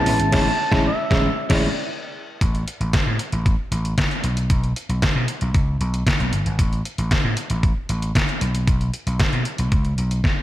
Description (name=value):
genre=early-eighties boogie funk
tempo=115 BPM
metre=4/4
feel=straight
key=A major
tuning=A4 = 439 Hz
part: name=expressive synth lead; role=melody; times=0.0-1.9 s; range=E5 to A5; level=-25 LUFS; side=right 2 dB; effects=chorus, slapback echo, tape echo
part: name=FM electric piano with tremolo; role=accompaniment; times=0.0-1.7 s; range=G#3 to E4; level=-24 LUFS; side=left 2 dB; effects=slapback echo
part: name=vintage slap bass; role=bass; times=0.0-10.2 s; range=G1 to B2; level=-22 LUFS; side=equal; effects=none
part: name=electric guitar at the edge of break-up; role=riff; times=0.1-1.7 s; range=C#4 to E5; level=-30 LUFS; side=right 4 dB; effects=none
part: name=detuned 8-bit digital drum machine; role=drums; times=0.1-10.4 s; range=crash cymbal, handclaps, hi-hat, kick drum, snare drum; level=-21 LUFS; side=equal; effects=overdrive
room=light reverb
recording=none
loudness=-18 LUFS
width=side -14 dB against mid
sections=0.0-2.4 A section; 2.4-10.4 B section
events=band accent 0.3-2.4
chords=0.0 Amaj7; 2.4 N.C.